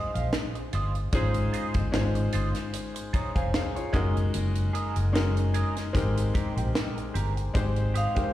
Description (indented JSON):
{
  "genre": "lush 1970s-style soul",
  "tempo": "75 BPM",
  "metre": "4/4",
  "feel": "swing 54% on 16ths",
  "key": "Ab major",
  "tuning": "A4 = 439 Hz",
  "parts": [
    { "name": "vibraphone with medium hard mallets", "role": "melody", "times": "0.0-0.3, 8.0-8.3 s", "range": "Eb5 to F5", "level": "-32 LUFS", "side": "right 1 dB", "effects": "slapback echo" },
    { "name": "clear baby grand piano", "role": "accompaniment", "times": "0.0-8.3 s", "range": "Ab3 to Bb5", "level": "-31 LUFS", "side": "left 4 dB", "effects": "slapback echo" },
    { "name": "electric guitar through a small old amp", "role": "riff", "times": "0.0-8.2 s", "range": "C4 to F5", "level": "-36 LUFS", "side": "right 7 dB", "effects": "wah, slapback echo" },
    { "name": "vintage muted fingered electric bass", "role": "bass", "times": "0.2-8.1 s", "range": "F1 to Bb1", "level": "-26 LUFS", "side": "equal", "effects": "none" },
    { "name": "tight funk drum kit", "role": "drums", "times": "0.2-8.3 s", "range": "hi-hat, kick drum, snare drum", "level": "-30 LUFS", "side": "equal", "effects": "none" },
    { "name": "clear horn section", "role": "stabs", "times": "1.1-1.7 s", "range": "Eb4 to Ab4", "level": "-34 LUFS", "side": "right 3 dB", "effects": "slapback echo" }
  ],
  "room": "little or no reverb",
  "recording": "live gig heard through the venue's PA, recital hall reverb",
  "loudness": "-25 LUFS",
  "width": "side -14 dB against mid",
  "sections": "0.0-7.5 A section",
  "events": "none",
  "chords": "0.0 Ab6; 1.1 Dbmaj9; 3.9 Gb69; 5.9 Abmaj9; 7.5 Abmaj7"
}